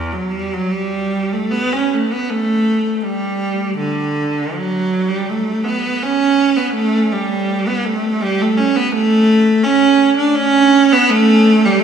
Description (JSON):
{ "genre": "classical, free, expressive piece for unaccompanied cello", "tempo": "82 BPM", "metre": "3/4", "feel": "uneven beats, rubato", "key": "unclear", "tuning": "A4 = 439 Hz", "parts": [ { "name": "clear cello", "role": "solo", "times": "0.0-11.8 s", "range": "E2 to D4", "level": "-13 LUFS", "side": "right 2 dB", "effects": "none" } ], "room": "wet cathedral reverb, RT60 4.1 s", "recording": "studio reverb", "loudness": "-13 LUFS", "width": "side -7 dB against mid", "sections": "0.0-11.8 A section", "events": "none", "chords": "none" }